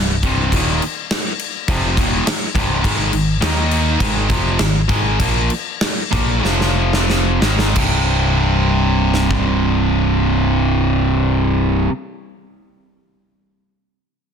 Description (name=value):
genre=hard rock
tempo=88-104 BPM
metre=4/4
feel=straight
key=C minor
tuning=A4 = 440 Hz
part: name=overdriven electric guitar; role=riff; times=0.0-11.9 s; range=C2 to Eb4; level=-18 LUFS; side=equal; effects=none
part: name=modern bright picked electric bass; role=bass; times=0.0-11.9 s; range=C1 to Eb2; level=-19 LUFS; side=equal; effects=none
part: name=gated 80s drum kit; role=drums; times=0.2-9.5 s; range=crash cymbal, kick drum, snare drum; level=-19 LUFS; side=equal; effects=soft clipping on snare
room=studio reverb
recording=dense, heavily limited modern master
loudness=-14 LUFS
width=side -7 dB against mid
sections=0.0-7.8 A section; 7.8-10.5 B section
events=slowing down 2.8-7.8; drum fill 6.4-7.8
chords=0.0 Cm; 2.8 Ab5; 3.4 Eb5; 4.0 Ab5; 6.4 F5; 7.4 Ab5; 7.8 C5